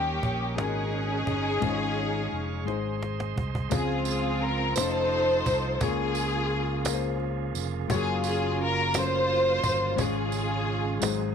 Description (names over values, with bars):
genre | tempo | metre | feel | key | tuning
slow gospel | 57 BPM (dotted quarters) | 6/8 | straight | Db major | A4 = 442 Hz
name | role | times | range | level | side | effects
warm studio string section | melody | 0.0-11.3 s | Bb3 to C5 | -27 LUFS | left 1 dB | none
clear concert grand piano | accompaniment | 0.0-11.3 s | Ab2 to Db5 | -33 LUFS | left 12 dB | none
bright tonewheel organ | sustained chords | 0.0-11.3 s | Db3 to Db6 | -36 LUFS | right 15 dB | slow rotary speaker, overdrive
fingered electric bass | bass | 0.0-11.3 s | F1 to Eb2 | -32 LUFS | right 1 dB | none
cajon | drums | 0.2-11.2 s | none | -31 LUFS | right 1 dB | none
tambourine | percussion | 3.7-11.3 s | none | -36 LUFS | right 19 dB | none
room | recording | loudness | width
studio ambience | 1960s-style stereo with parts hard left and right | -25 LUFS | side -7 dB against mid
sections
0.0-3.7 A section; 3.7-11.3 B section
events
drum fill 2.7-3.7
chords
0.0 Eb7; 0.6 Ab9sus4; 1.6 Db/Ab; 2.7 Ab; 3.7 Dbmaj7; 4.8 F7b13; 5.8 Bbm7/Db; 7.9 Gbmaj7; 10.0 Db/Ab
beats
0.57 | 1.62 2.67 | 3.71 4.76 | 5.81 6.85 | 7.89 8.94 | 9.98 11.02